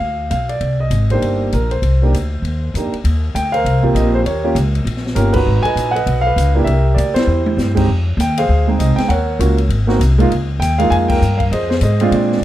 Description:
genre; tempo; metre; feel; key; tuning
jazz piano trio; 198 BPM; 4/4; swing 61% on 8ths; C minor, Eb major from 3.0 s; A4 = 440 Hz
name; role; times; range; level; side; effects
warm concert grand piano; melody; 0.0-12.4 s; Ab3 to Ab5; -17 LUFS; right 2 dB; none
upright bass; bass; 0.0-12.4 s; G1 to Bb2; -16 LUFS; equal; none
open jazz drum kit; drums; 0.3-12.4 s; crash cymbal, hi-hat, kick drum, ride cymbal, snare drum, toms; -25 LUFS; left 2 dB; none
room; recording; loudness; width
light reverb; dark, warm production; -13 LUFS; side -13 dB against mid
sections
0.0-3.0 A section; 3.0-12.4 B section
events
band accent 5.3, 7.1, 11.1; drum fill 7.3-7.6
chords
0.0 G7 (rootless); 0.6 Cm7; 3.0 Eb6; 4.3 Eb7; 5.5 Abm7; 6.7 C7; 7.9 Fm9; 9.1 Ebm7; 9.7 Ab; 10.3 Db6; 11.5 Fm7

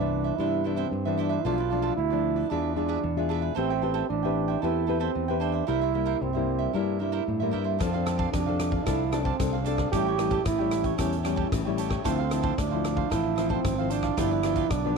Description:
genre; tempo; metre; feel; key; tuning
samba and choro; 113 BPM; 4/4; straight; unclear; A4 = 440 Hz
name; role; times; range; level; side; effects
mellow trombone; second line; 0.0-15.0 s; C4 to G4; -29 LUFS; right 12 dB; none
cavaquinho; accompaniment; 0.0-15.0 s; D4 to G5; -34 LUFS; right 14 dB; none
nylon-string guitar; accompaniment; 0.0-15.0 s; G2 to B4; -30 LUFS; left 15 dB; none
fingered electric bass; bass; 0.0-15.0 s; G1 to A2; -30 LUFS; left 2 dB; none
swinging big-band drum kit; drums; 7.8-14.8 s; hi-hat, kick drum, rim click; -31 LUFS; left 1 dB; none
room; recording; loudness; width
light reverb, studio reverb; 1960s-style stereo with parts hard left and right; -24 LUFS; side -4 dB against mid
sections
0.0-15.0 A section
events
trombone solo 0.0-15.0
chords
0.0 Cmaj9; 1.4 Bm7b5; 2.5 E7b9; 3.6 Am9; 5.7 C7; 7.8 F6; 9.9 A7; 12.1 Dm9; 14.2 G7

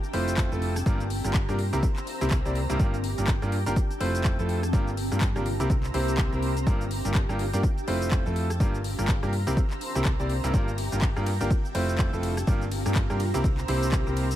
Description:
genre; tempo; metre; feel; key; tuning
piano house; 124 BPM; 4/4; swing 59% on 16ths; G dorian; A4 = 439 Hz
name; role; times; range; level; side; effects
analog string pad; sustained chords; 0.0-14.4 s; G4 to A6; -38 LUFS; right 1 dB; ensemble chorus, sidechain pumping
house drum kit; drums; 0.0-14.4 s; handclaps, hi-hat, ride cymbal, rim click, shaker; -35 LUFS; left 1 dB; overdrive
granular cloud pad; texture; 0.0-14.4 s; C4 to Bb5; -37 LUFS; equal; built-in reverb, sidechain pumping
bright concert grand piano; riff; 0.1-14.3 s; G2 to D5; -30 LUFS; equal; sidechain pumping, tape echo
hollow-body short-scale fingered electric bass; bass; 0.1-14.4 s; F1 to G2; -29 LUFS; equal; sidechain pumping
electronic kick drum; drums; 0.4-14.0 s; none; -25 LUFS; equal; overdrive
room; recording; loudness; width
little or no reverb; none; -23 LUFS; side -12 dB against mid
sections
0.0-14.4 A section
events
none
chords
0.0 Fmaj7; 0.9 Gm7; 1.6 C7; 2.8 Gm7; 3.8 Fmaj7; 4.7 Gm7; 5.5 C7; 6.7 Gm7; 7.6 Fmaj7; 8.6 Gm7; 9.3 C7; 10.5 Gm7; 11.5 Fmaj7; 12.5 Gm7; 13.2 C7

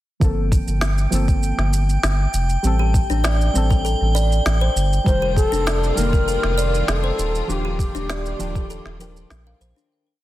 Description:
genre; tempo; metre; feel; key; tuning
organic downtempo; 99 BPM; 4/4; straight; unclear; A4 = 440 Hz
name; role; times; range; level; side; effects
deep mellow chord stab; accompaniment; 0.2-9.9 s; Eb3 to Bb4; -28 LUFS; left 1 dB; chorus, sidechain pumping, digital delay
round analog bass; bass; 0.2-9.7 s; Eb1 to Bb1; -20 LUFS; equal; sidechain pumping
electronic kick drum; drums; 0.2-8.7 s; none; -19 LUFS; equal; overdrive
electronic shaker and snare drum; drums; 0.2-9.9 s; none; -26 LUFS; right 1 dB; overdrive
drifting glass-harmonics texture; texture; 0.6-9.9 s; G5; -30 LUFS; equal; chorus, built-in reverb
kalimba; arpeggios; 2.8-9.9 s; D4 to F5; -28 LUFS; right 1 dB; digital delay
bass bansuri; melody; 5.1-9.3 s; G4 to C5; -24 LUFS; left 3 dB; digital delay
clear symphonic string section; sustained chords; 5.1-9.9 s; Eb3 to F4; -31 LUFS; left 1 dB; sidechain pumping
room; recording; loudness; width
light reverb, small room reverb; dense, heavily limited modern master; -17 LUFS; side -15 dB against mid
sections
0.2-9.9 groove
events
fade-out 6.7-9.9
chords
0.2 Gm11; 2.6 Gsus24; 5.1 Ebmaj9

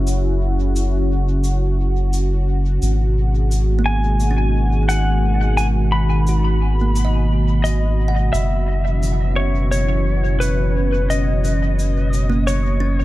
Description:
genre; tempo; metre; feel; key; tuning
ambient dub; 87 BPM; 4/4; straight; unclear; A4 = 440 Hz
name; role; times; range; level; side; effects
warm analog pad; sustained chords; 0.0-13.0 s; B2 to F#4; -24 LUFS; equal; chorus
soft dub sub bass; bass; 0.0-13.0 s; F#1 to G#1; -18 LUFS; equal; none
cabasa; drums; 0.1-12.6 s; none; -35 LUFS; left 1 dB; dub echo
kalimba; arpeggios; 3.8-13.0 s; A#3 to F#5; -28 LUFS; right 5 dB; analog delay
clean lap steel guitar; melody; 3.9-13.0 s; B4 to B5; -24 LUFS; left 2 dB; dub echo
room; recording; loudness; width
studio reverb; echo-heavy mix; -16 LUFS; side -16 dB against mid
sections
0.0-13.0 A section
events
filter sweep on kalimba 0.0-13.0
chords
0.0 F#5; 2.8 G#m7; 8.3 F#7sus4

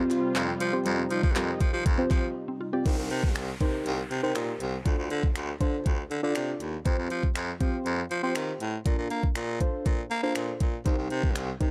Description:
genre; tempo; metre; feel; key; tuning
dance-pop; 120 BPM; 4/4; straight; C dorian; A4 = 439 Hz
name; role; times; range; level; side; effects
deep mellow chord stab; accompaniment; 0.0-11.7 s; C4 to D5; -34 LUFS; equal; chorus, sidechain pumping
warm analog pad; sustained chords; 0.0-2.8 s; C3 to F4; -38 LUFS; equal; chorus, sidechain pumping
mallet-like synth pluck; arpeggios; 0.0-2.8 s; G3 to G4; -39 LUFS; equal; chorus, sidechain pumping, tape echo
raspy baritone saxophone; bass; 0.0-11.7 s; C2 to Bb3; -33 LUFS; equal; sidechain pumping
pop drum kit; drums; 0.1-11.7 s; finger snaps, handclaps, hi-hat, kick drum; -30 LUFS; equal; overdrive
group handclap; percussion; 0.1-11.5 s; none; -48 LUFS; equal; none
downlifter; sound effects; 2.9-6.9 s; none; -46 LUFS; equal; none
room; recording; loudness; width
light reverb; dark, warm production; -28 LUFS; mono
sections
0.0-2.9 A section; 2.9-11.7 B section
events
break 2.4-2.9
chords
0.0 Fsus2; 2.9 Cm7; 4.9 Dm7; 6.9 Fsus2; 8.9 Bbmaj7; 10.9 Cm7

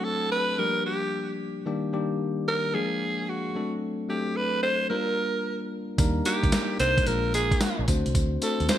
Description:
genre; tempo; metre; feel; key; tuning
R&B, new jack swing; 111 BPM; 4/4; swing 67% on 16ths; unclear; A4 = 441 Hz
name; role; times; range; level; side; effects
growling alto saxophone; melody; 0.0-8.8 s; F#4 to C5; -27 LUFS; right 1 dB; none
bell-like tine electric piano; accompaniment; 0.0-8.8 s; Eb3 to C5; -29 LUFS; left 3 dB; none
vintage muted fingered electric bass; bass; 6.0-8.7 s; Bb1 to Eb2; -28 LUFS; right 1 dB; none
dusty soul sampler-style drum kit; drums; 6.0-8.8 s; hi-hat, kick drum, snare drum, tambourine; -26 LUFS; right 1 dB; gated reverb
room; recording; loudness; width
light reverb; bright 1980s-style digital production; -24 LUFS; side -11 dB against mid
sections
0.0-8.8 A section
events
none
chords
0.0 D7; 0.6 Gm7; 1.7 Ebmaj7; 2.7 Bb7; 3.6 D7; 4.9 Gm7; 6.0 Ebmaj7; 7.1 Bb7; 7.9 D7

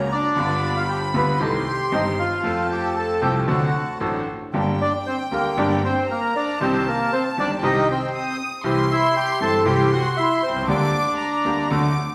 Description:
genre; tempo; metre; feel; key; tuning
tango; 116 BPM; 4/4; rubato; G harmonic minor from 4.5 s; A4 = 441 Hz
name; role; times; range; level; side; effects
warm chamber violin section; second line; 0.0-12.1 s; G5 to Eb6; -31 LUFS; equal; none
bright concert grand piano; accompaniment; 0.0-11.9 s; G1 to A4; -26 LUFS; equal; none
bandoneon; stabs; 0.0-11.9 s; D3 to A4; -34 LUFS; equal; none
bandoneon; melody; 0.1-11.7 s; Bb3 to B5; -25 LUFS; equal; none
room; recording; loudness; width
wet recital hall reverb, RT60 1.5 s; recorded in a church or concert hall; -21 LUFS; mono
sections
0.0-4.5 A section; 4.5-12.1 B section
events
none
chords
0.4 G7; 1.4 Cm; 2.4 F; 3.5 D7; 4.5 Gm; 6.6 Cm; 8.6 C; 10.7 Gm/D

